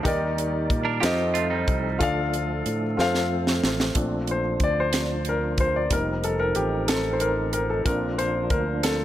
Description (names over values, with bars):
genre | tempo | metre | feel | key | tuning
slow gospel | 62 BPM (dotted quarters) | 6/8 | straight | Bb major | A4 = 441 Hz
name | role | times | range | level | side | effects
semi-hollow electric guitar | second line | 0.0-2.0 s | G3 to Bb4 | -29 LUFS | right 8 dB | none
warm grand piano | accompaniment | 0.0-9.0 s | D3 to F5 | -25 LUFS | left 2 dB | none
tonewheel organ | sustained chords | 0.0-9.0 s | Eb3 to D5 | -31 LUFS | right 2 dB | slow rotary speaker, overdrive, chorus vibrato
fingered electric bass | bass | 0.0-9.0 s | F1 to Bb2 | -29 LUFS | equal | none
tight funk drum kit | drums | 0.1-9.0 s | hi-hat, kick drum, snare drum | -26 LUFS | right 1 dB | none
dark French horn section | sustained chords | 3.9-9.0 s | F3 to Eb4 | -36 LUFS | left 1 dB | none
room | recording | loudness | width
light reverb, studio reverb | none | -22 LUFS | side -12 dB against mid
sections
0.0-4.0 A section; 4.0-9.0 B section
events
drum fill 3.0-4.0; grand piano solo 4.0-9.0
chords
0.1 Ebmaj7; 1.0 F7; 2.0 Dm; 3.0 F; 4.0 Bbmaj7; 5.9 F7sus4; 7.9 Bbmaj7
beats
| 0.05 1.03 | 2.01 2.98 | 3.96 4.93 | 5.91 6.89 | 7.86 8.84